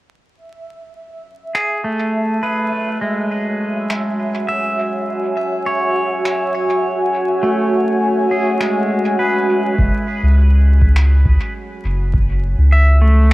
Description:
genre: ambient dub.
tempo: 102 BPM.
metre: 4/4.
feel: straight.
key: F# minor.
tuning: A4 = 440 Hz.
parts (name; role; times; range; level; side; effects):
deep dark ambient pad; sustained chords; 3.4-13.3 s; F#4 to G#5; -20 LUFS; equal; chorus, built-in reverb.
bubbling stepped-filter texture; texture; 0.4-9.8 s; E5; -29 LUFS; right 3 dB; chorus, built-in reverb.
pedal steel guitar; arpeggios; 1.5-13.3 s; G#3 to E5; -20 LUFS; equal; low-pass filter, tape echo.
electronic finger snaps; drums; 1.5-13.3 s; none; -26 LUFS; equal; overdrive, cassette tape, dub echo.
soft dub sub bass; bass; 9.8-13.3 s; F#1 to C#2; -11 LUFS; equal; none.
electronic kick drum; drums; 9.8-12.3 s; none; -18 LUFS; equal; cassette tape.
room: light reverb.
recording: home recording on cassette, vinyl crackle.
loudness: -14 LUFS.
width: side -18 dB against mid.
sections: 0.4-9.8 A section; 9.8-13.3 B section.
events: fade-in on ambient pad 0.4-9.8; filter sweep on pedal steel guitar 0.4-9.8.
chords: 0.4 F#m9; 9.8 F#7sus2.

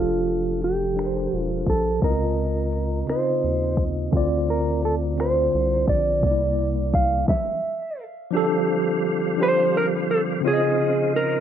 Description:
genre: slow six-eight R&B.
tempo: 57 BPM (dotted quarters).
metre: 6/8.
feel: straight.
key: F major.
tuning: A4 = 439 Hz.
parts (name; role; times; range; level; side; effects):
mellow electric guitar; melody; 0.0-11.4 s; F4 to F5; -24 LUFS; right 2 dB; none.
mellow tine electric piano; accompaniment; 0.0-11.4 s; C3 to Eb5; -24 LUFS; equal; medium stereo tremolo.
round analog bass; bass; 0.0-7.2 s; E1 to Eb2; -27 LUFS; left 1 dB; none.
smooth R&B drum kit; drums; 0.3-7.5 s; finger snaps, hi-hat, kick drum, snare drum; -25 LUFS; left 1 dB; none.
tonewheel organ; sustained chords; 8.3-11.4 s; Db3 to F4; -28 LUFS; left 1 dB; chorus vibrato, fast rotary speaker.
room: moderate studio reverb, RT60 0.7 s.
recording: low-pass filter.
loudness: -20 LUFS.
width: side -9 dB against mid.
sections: 0.0-8.3 A section; 8.3-11.4 B section.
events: filter sweep 0.0-8.3; stop 7.3-8.3.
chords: 0.0 F69; 2.0 Dbmaj9; 4.1 Dm7; 6.2 C9; 8.3 F69; 10.4 Dbmaj9.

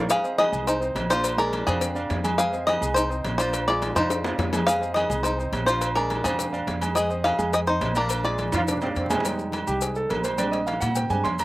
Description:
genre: latin, salsa.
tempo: 210 BPM.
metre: 4/4.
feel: straight.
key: unclear.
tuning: A4 = 440 Hz.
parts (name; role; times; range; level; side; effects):
warm grand piano; accompaniment; 0.0-11.4 s; G3 to C6; -28 LUFS; right 2 dB; none.
upright bass; bass; 0.0-11.4 s; Bb1 to Bb2; -30 LUFS; equal; none.
bluegrass banjo; melody; 0.1-8.6 s; C4 to F5; -24 LUFS; left 1 dB; none.
agogo bells and timbales; percussion; 0.1-11.4 s; none; -31 LUFS; right 3 dB; slapback echo.
congas; percussion; 0.1-11.4 s; none; -35 LUFS; left 1 dB; none.
cowbell and bongos; percussion; 0.1-11.4 s; none; -34 LUFS; left 5 dB; none.
maracas; percussion; 0.1-11.4 s; none; -37 LUFS; left 5 dB; none.
bright trombone section; second line; 8.5-9.2 s; C4 to F4; -29 LUFS; right 1 dB; slapback echo.
room: little or no reverb.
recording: recorded outdoors, with no room sound.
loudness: -22 LUFS.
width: side -18 dB against mid.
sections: 0.1-9.2 A section; 9.2-11.4 B section.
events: drum fill 4.0-4.7, 8.4-9.2; grand piano solo 9.2-11.4.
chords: 0.1 Fm7; 1.2 Bb9; 2.4 Fm7; 3.5 Bb9; 4.7 Fm7; 5.8 Bb9; 7.0 Fm7; 8.1 Bb9; 9.2 Fm7; 10.4 Bb13.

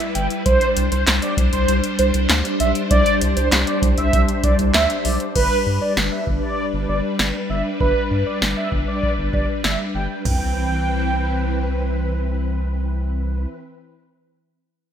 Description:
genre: synth-pop.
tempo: 98 BPM.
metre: 4/4.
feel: straight.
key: C major.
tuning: A4 = 440 Hz.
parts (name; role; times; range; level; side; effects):
string machine, violas; sustained chords; 0.0-13.5 s; E3 to C5; -24 LUFS; left 1 dB; ensemble chorus.
electro analog drum machine; drums; 0.0-10.4 s; crash cymbal, handclaps, hi-hat, kick drum, snare drum, toms; -21 LUFS; equal; none.
mellow synth brass; second line; 0.1-12.1 s; B4 to G5; -22 LUFS; right 2 dB; chorus, ping-pong delay.
round analog bass; bass; 0.2-13.5 s; G1 to G2; -22 LUFS; equal; none.
room: moderate plate reverb, RT60 1.6 s.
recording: bright 1980s-style digital production.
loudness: -17 LUFS.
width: side -9 dB against mid.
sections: 0.0-5.4 A section; 5.4-10.3 B section; 10.3-12.7 C section.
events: none.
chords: 0.5 Csus2; 5.4 G; 10.3 Cmaj7.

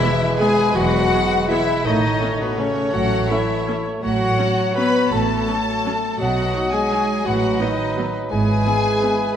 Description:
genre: classical, orchestral ballroom waltz.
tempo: 167 BPM.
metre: 3/4.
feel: uneven beats, rubato.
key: E major.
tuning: A4 = 444 Hz.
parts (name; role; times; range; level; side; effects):
rich chamber violin section; melody; 0.0-9.3 s; B4 to B5; -25 LUFS; left 4 dB; none.
mellow clarinet; second line; 0.0-9.4 s; B3 to B4; -26 LUFS; equal; none.
mellow hollow flute section; second line; 0.0-9.3 s; B4 to B5; -28 LUFS; left 2 dB; none.
rich chamber violin section; second line; 0.0-9.3 s; B3 to B4; -29 LUFS; left 1 dB; none.
warm cor anglais; second line; 0.0-9.4 s; B4 to D#5; -29 LUFS; right 2 dB; none.
mellow bassoon; accompaniment; 0.0-9.4 s; E3 to A3; -26 LUFS; right 1 dB; none.
rich chamber viola section; accompaniment; 0.0-9.1 s; E3 to D#4; -31 LUFS; right 2 dB; none.
dark French horn section; sustained chords; 0.0-9.3 s; B2 to B3; -24 LUFS; left 3 dB; none.
warm chamber double bass section; bass; 0.7-8.6 s; E1 to B1; -26 LUFS; right 3 dB; none.
warm studio cello section; bass; 0.7-8.6 s; E2 to B2; -27 LUFS; right 2 dB; none.
room: wet concert hall reverb, RT60 2.1 s.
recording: none.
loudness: -17 LUFS.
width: side -9 dB against mid.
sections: 0.0-9.4 A section.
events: none.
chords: 0.0 E; 1.9 A; 4.0 F#m/A; 6.2 B; 7.2 B7/A; 8.3 E/G#.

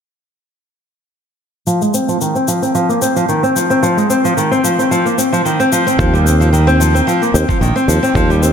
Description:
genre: organic downtempo.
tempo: 111 BPM.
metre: 4/4.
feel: swing 54% on 16ths.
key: F minor.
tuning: A4 = 440 Hz.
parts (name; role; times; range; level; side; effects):
nylon-string guitar; arpeggios; 1.7-8.5 s; Eb3 to C4; -13 LUFS; equal; low-pass filter, dub echo.
shaker; drums; 1.7-8.5 s; none; -24 LUFS; left 5 dB; none.
sustaining fretless electric bass; bass; 6.0-8.5 s; Bb1 to Eb2; -12 LUFS; equal; none.
electronic kick drum; drums; 6.0-8.3 s; none; -18 LUFS; equal; none.
room: moderate echo chamber reverb, RT60 2.2 s.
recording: echo-heavy mix.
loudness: -11 LUFS.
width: side -7 dB against mid.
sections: 1.7-8.5 A section.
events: filter sweep on nylon-string guitar 1.7-8.5.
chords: 1.7 F7(no3); 6.0 Ebsus2.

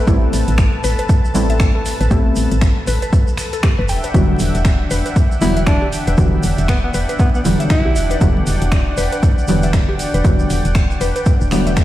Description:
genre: deep house.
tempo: 118 BPM.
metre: 4/4.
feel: swing 59% on 16ths.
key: unclear.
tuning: A4 = 440 Hz.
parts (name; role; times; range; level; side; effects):
breathy alto saxophone; melody; 0.0-0.2, 5.4-8.1 s; B3 to E4; -24 LUFS; equal; ping-pong delay.
warm analog pad; sustained chords; 0.0-11.8 s; D4 to A5; -25 LUFS; equal; chorus, sidechain pumping.
deep mellow chord stab; stabs; 0.0-11.8 s; D3 to E4; -20 LUFS; equal; chorus, sidechain pumping, ping-pong delay.
mallet-like synth pluck; arpeggios; 0.1-11.7 s; F#4 to G5; -27 LUFS; left 2 dB; chorus, sidechain pumping, ping-pong delay.
woody FM bass; bass; 0.1-11.8 s; D1 to B1; -19 LUFS; equal; sidechain pumping.
deep house drum kit; drums; 0.1-11.8 s; finger snaps, hi-hat; -27 LUFS; equal; overdrive, studio reverb.
electronic kick drum; drums; 0.1-11.8 s; none; -14 LUFS; equal; overdrive, studio reverb.
tube shaker; percussion; 0.1-11.8 s; none; -32 LUFS; right 4 dB; none.
swell; sound effects; 11.4-11.8 s; none; -31 LUFS; left 2 dB; none.
room: light reverb, digital ambience.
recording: played on a big sound system in a bare room, large studio reverb, vinyl crackle.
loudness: -13 LUFS.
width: side -14 dB against mid.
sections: 0.0-11.8 A section.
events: none.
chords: 0.0 Am9; 3.9 Em9.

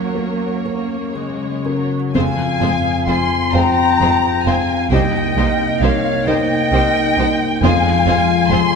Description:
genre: cinematic, emotional film score for orchestra.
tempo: 39-46 BPM (dotted quarters).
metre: 6/8.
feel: rubato.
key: F minor.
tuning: A4 = 437 Hz.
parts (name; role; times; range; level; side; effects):
warm symphonic violin section; melody; 0.0-8.8 s; Db5 to C6; -20 LUFS; left 2 dB; none.
felt-muted upright piano; accompaniment; 0.0-8.8 s; C2 to Gb5; -23 LUFS; equal; none.
rich studio viola section; accompaniment; 0.0-8.6 s; Gb3 to Bb4; -27 LUFS; right 2 dB; none.
concert harp; arpeggios; 0.0-8.8 s; F2 to C6; -24 LUFS; left 7 dB; none.
rich symphonic cello section; bass; 0.0-8.6 s; C2 to Bb3; -25 LUFS; right 4 dB; none.
silver concert flute; second line; 2.1-8.8 s; Db5 to Ab5; -20 LUFS; left 1 dB; none.
warm symphonic violin section; second line; 2.1-8.6 s; F4 to C5; -26 LUFS; left 2 dB; none.
dark French horn section; sustained chords; 2.1-8.8 s; Ab3 to F4; -22 LUFS; left 4 dB; none.
rich symphonic double bass section; bass; 2.2-8.6 s; F1 to C2; -23 LUFS; right 4 dB; none.
room: wet scoring stage reverb, RT60 1.8 s.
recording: minimal, uncompressed stereo recording.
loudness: -14 LUFS.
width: side -5 dB against mid.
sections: 0.0-2.1 A section; 2.1-8.8 B section.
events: none.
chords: 0.0 Gb; 2.1 Fm; 4.9 Cm7; 7.6 Fm.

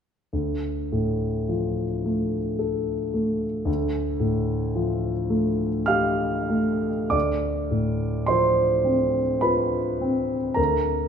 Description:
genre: classical, impressionist solo piano.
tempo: 53 BPM.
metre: 3/4.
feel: uneven beats, rubato.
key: D dorian.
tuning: A4 = 440 Hz.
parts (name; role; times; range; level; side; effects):
warm grand piano; solo; 0.3-11.1 s; D2 to F6; -22 LUFS; equal; none.
room: wet recital hall reverb, RT60 1.4 s.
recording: minimal, uncompressed stereo recording.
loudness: -22 LUFS.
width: side -7 dB against mid.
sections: 0.3-7.1 A section; 7.1-11.1 B section.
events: none.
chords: 0.3 Dm; 3.7 Fadd9/D; 7.1 Dm7; 10.6 C7sus2/D (rootless).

